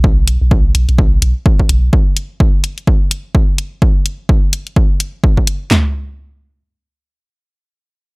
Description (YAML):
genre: minimal techno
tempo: 127 BPM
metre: 4/4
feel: swing 59% on 16ths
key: unclear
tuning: A4 = 437 Hz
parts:
  - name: punchy sub bass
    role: bass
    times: 0.0-1.9 s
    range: B1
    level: -13 LUFS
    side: equal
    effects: sidechain pumping
  - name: punchy analog drum machine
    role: drums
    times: 0.0-5.8 s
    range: handclaps, kick drum, snare drum, toms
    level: -11 LUFS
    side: equal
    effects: overdrive
  - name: electronic hi-hat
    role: drums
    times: 0.3-5.6 s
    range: none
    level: -17 LUFS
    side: left 2 dB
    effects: none
room: little or no reverb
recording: dry, gritty hardware recording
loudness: -11 LUFS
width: side -31 dB against mid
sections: 0.0-5.7 A section; 5.7-8.2 B section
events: none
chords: none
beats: | 0.04 0.51 0.98 1.46 | 1.93 2.40 2.87 3.35 | 3.82 4.29 4.76 5.24 | 5.71